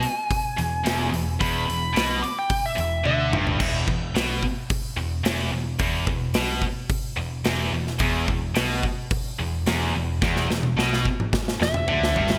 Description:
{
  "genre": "hard rock",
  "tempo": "109 BPM",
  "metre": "4/4",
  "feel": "straight",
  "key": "unclear",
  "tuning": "A4 = 442 Hz",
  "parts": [
    { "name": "biting lead guitar", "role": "melody", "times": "0.0-3.3, 11.6-12.4 s", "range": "E5 to D6", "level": "-29 LUFS", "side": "equal", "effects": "overdrive, digital delay" },
    { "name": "overdriven electric guitar", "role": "riff", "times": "0.0-3.6, 8.0-12.4 s", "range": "E2 to D3", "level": "-33 LUFS", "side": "equal", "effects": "none" },
    { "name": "big rock drum kit", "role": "drums", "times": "0.0-12.4 s", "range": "crash cymbal, hi-hat, kick drum, snare drum, toms", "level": "-28 LUFS", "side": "equal", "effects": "gated reverb" },
    { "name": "heavy high-gain guitar", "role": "riff", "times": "0.6-12.4 s", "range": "E2 to D3", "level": "-30 LUFS", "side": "equal", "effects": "distortion" },
    { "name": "overdriven picked electric bass", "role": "bass", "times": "0.6-12.4 s", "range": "E1 to D2", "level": "-30 LUFS", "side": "equal", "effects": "none" }
  ],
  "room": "moderate lush hall reverb, RT60 1.8 s, studio reverb",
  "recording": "bright 1980s-style digital production",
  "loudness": "-24 LUFS",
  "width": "mono",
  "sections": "0.0-3.6 A section; 3.6-12.4 B section",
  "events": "lead electric guitar solo 0.0-3.6; drum fill 3.1-3.6, 10.2-12.4",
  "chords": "0.0 E5"
}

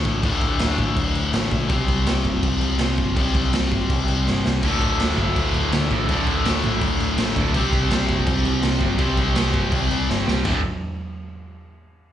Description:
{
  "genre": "punk rock",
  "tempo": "165 BPM",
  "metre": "4/4",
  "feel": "straight",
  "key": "unclear",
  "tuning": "A4 = 439 Hz",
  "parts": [
    { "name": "distorted electric guitar", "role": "riff", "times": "0.0-10.6 s", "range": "D2 to C4", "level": "-23 LUFS", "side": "left 4 dB", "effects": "distortion, slapback echo" },
    { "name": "hollow-body short-scale picked electric bass", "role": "bass", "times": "0.0-10.6 s", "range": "D1 to D2", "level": "-24 LUFS", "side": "equal", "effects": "none" },
    { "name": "raw garage drum kit", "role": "drums", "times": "0.0-10.5 s", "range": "crash cymbal, kick drum, snare drum, splash cymbal, toms", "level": "-23 LUFS", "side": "right 1 dB", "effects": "none" },
    { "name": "distorted electric guitar", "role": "riff", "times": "4.6-10.6 s", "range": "D2 to C4", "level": "-27 LUFS", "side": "right 13 dB", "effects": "overdrive, slapback echo" }
  ],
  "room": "little or no reverb",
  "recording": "live gig heard through the venue's PA, club reverb, nothing above 10.6 kHz",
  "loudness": "-18 LUFS",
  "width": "side -11 dB against mid",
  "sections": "0.0-10.5 A section; 10.5-11.9 B section",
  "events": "drum fill 4.3-4.6, 10.1-10.5",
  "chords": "0.0 D5; 1.7 C5; 4.6 D5; 7.5 C5; 10.5 D5"
}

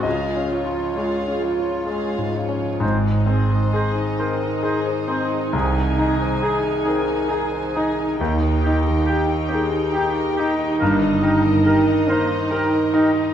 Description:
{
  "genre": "classical, romantic movement for piano and orchestra",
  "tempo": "64-72 BPM",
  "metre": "3/4",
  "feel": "rubato",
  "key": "Ab major",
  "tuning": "A4 = 442 Hz",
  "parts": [
    { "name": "bright grand piano", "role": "melody", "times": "0.0-13.3 s", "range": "C2 to Eb5", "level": "-22 LUFS", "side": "left 2 dB", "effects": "none" },
    { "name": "warm studio violin section", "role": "second line", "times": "0.0-13.3 s", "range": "Bb3 to F5", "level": "-30 LUFS", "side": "left 1 dB", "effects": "none" },
    { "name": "dark studio viola section", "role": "accompaniment", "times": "0.0-13.3 s", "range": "F3 to F4", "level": "-27 LUFS", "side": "right 4 dB", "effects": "none" },
    { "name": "warm studio cello section", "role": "bass", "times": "0.0-11.5 s", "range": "G2 to F4", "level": "-28 LUFS", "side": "right 2 dB", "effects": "none" },
    { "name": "clear studio violin section", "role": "melody", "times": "2.8-13.3 s", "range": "Eb5 to Ab5", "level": "-33 LUFS", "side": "left 3 dB", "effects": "none" },
    { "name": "clear clarinet", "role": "second line", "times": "2.8-13.1 s", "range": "Eb4", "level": "-28 LUFS", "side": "equal", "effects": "none" },
    { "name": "warm oboe", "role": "second line", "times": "2.8-13.1 s", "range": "G4 to C5", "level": "-30 LUFS", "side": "right 2 dB", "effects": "none" },
    { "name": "dark French horn section", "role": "sustained chords", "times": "2.8-13.3 s", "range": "Eb3 to C5", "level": "-26 LUFS", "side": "left 1 dB", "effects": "none" },
    { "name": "warm studio double bass section", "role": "bass", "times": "2.8-11.5 s", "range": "G1 to Eb2", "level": "-24 LUFS", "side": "right 4 dB", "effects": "none" }
  ],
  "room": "moderate scoring stage reverb, RT60 1.6 s",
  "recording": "dark, warm production",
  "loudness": "-18 LUFS",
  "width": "side -9 dB against mid",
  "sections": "0.0-2.8 A section; 2.8-13.3 B section",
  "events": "none",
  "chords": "0.0 Db; 2.8 Ab; 5.5 Ab/C; 8.2 Eb; 10.8 Eb/G"
}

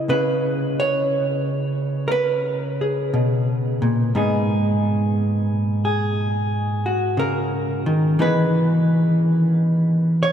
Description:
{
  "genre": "solo jazz",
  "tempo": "59 BPM",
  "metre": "4/4",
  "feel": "swing 68% on 8ths",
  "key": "G# minor",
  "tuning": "A4 = 440 Hz",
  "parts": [
    { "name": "hollow-body jazz guitar", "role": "solo", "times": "0.0-10.3 s", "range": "G#2 to C#5", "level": "-18 LUFS", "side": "equal", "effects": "none" }
  ],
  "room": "wet cathedral reverb, RT60 6.3 s",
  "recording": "in a vast, echoing space",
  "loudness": "-18 LUFS",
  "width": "side -8 dB against mid",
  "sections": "0.0-10.3 A section",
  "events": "none",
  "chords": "0.0 C#7(no3); 4.1 G#madd9; 8.2 Emaj7"
}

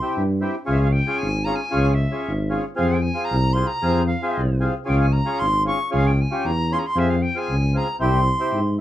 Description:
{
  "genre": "klezmer",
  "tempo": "115 BPM",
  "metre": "2/4",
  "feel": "straight",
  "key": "unclear",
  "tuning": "A4 = 438 Hz",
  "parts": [
    { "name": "bright reedy silver concert flute", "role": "melody", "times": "0.0-8.7 s", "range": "E5 to Db6", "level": "-25 LUFS", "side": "equal", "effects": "none" },
    { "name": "mellow accordion", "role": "accompaniment", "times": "0.0-8.6 s", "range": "C4 to Ab4", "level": "-25 LUFS", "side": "equal", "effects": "none" },
    { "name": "mellow tuba", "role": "bass", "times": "0.2-8.8 s", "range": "Ab1 to Ab2", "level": "-21 LUFS", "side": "equal", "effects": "none" }
  ],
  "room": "moderate small room reverb, RT60 0.5 s",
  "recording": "heard from further back in the room",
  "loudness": "-19 LUFS",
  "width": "side -13 dB against mid",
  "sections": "0.7-8.8 A section",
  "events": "none",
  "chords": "0.0 C; 0.7 Db; 2.8 Fm; 4.9 Db; 7.0 Fm; 8.0 C"
}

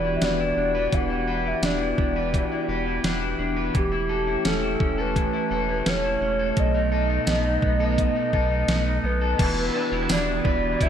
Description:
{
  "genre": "dream pop",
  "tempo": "85 BPM",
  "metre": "4/4",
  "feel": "straight",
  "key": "E dorian",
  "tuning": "A4 = 436 Hz",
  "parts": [
    { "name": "warbly nostalgic lead", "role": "melody", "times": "0.0-10.9 s", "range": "G4 to F#5", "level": "-27 LUFS", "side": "left 1 dB", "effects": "chorus, ping-pong delay" },
    { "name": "warm analog pad", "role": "sustained chords", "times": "0.0-10.9 s", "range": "E3 to G4", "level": "-29 LUFS", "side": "right 3 dB", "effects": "chorus" },
    { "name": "electric guitar at the edge of break-up", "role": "arpeggios", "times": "0.0-10.9 s", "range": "B2 to B4", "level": "-27 LUFS", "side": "left 3 dB", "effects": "wide subtle chorus, ping-pong delay" },
    { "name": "saturated sub bass", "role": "bass", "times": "0.0-10.9 s", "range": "E1 to B1", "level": "-28 LUFS", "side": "equal", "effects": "none" },
    { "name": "clean 12-bit digital drum machine", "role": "drums", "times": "0.2-10.9 s", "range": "crash cymbal, hi-hat, kick drum, snare drum, tambourine", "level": "-26 LUFS", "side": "equal", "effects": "gated reverb" },
    { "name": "raw garage guitar", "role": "accompaniment", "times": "9.4-10.9 s", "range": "E2 to E4", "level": "-31 LUFS", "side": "right 5 dB", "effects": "overdrive, tremolo, ensemble chorus" }
  ],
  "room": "moderate lush hall reverb, RT60 2.4 s",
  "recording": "bright 1980s-style digital production",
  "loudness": "-21 LUFS",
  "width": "side -9 dB against mid",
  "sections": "0.0-9.4 A section; 9.4-10.9 B section",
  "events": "none",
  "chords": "0.0 Em7; 3.7 A7/E; 6.6 B7; 9.4 Em7"
}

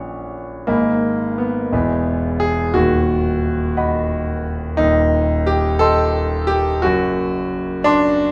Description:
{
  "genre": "classical, romantic character piece for solo piano",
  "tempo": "58 BPM (dotted quarters)",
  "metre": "6/8",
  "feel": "rubato",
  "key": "B major",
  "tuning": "A4 = 440 Hz",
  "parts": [
    { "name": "clear concert grand piano", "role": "solo", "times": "0.0-8.3 s", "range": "D#1 to C#6", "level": "-18 LUFS", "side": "equal", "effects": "none" }
  ],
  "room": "wet large studio reverb, RT60 1.2 s",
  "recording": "heard from further back in the room",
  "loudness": "-18 LUFS",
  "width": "mono",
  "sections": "0.0-8.3 A section",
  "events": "none",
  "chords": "0.0 F#/A#; 0.7 G#m; 1.7 Emaj7; 2.7 B/D#; 4.8 Cm/Eb; 6.8 D7/F#"
}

